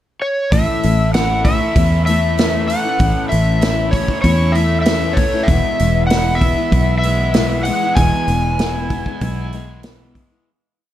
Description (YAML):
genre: folk rock and heartland rock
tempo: 97 BPM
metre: 4/4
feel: straight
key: A major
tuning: A4 = 440 Hz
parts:
  - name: overdriven slide guitar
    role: melody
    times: 0.2-9.8 s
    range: C#5 to G#5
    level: -19 LUFS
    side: equal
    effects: none
  - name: picked steel-string acoustic guitar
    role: accompaniment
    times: 0.5-10.5 s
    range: E2 to E4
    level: -22 LUFS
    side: left 6 dB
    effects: none
  - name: cranked stack guitar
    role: riff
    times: 0.5-10.5 s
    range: E2 to E4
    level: -25 LUFS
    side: right 3 dB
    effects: overdrive, spring reverb
  - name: fingered electric bass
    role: bass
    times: 0.5-10.2 s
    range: E1 to E2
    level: -18 LUFS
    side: equal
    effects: none
  - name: natural country drum kit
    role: drums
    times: 0.5-10.3 s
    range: hi-hat, kick drum, snare drum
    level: -19 LUFS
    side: right 1 dB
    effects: none
room: small room ambience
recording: dark, warm production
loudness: -13 LUFS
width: side -12 dB against mid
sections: 0.0-0.5 pickup bar; 0.5-10.5 verse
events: fade-out 8.0-10.5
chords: 0.0 N.C.; 0.5 A; 5.5 E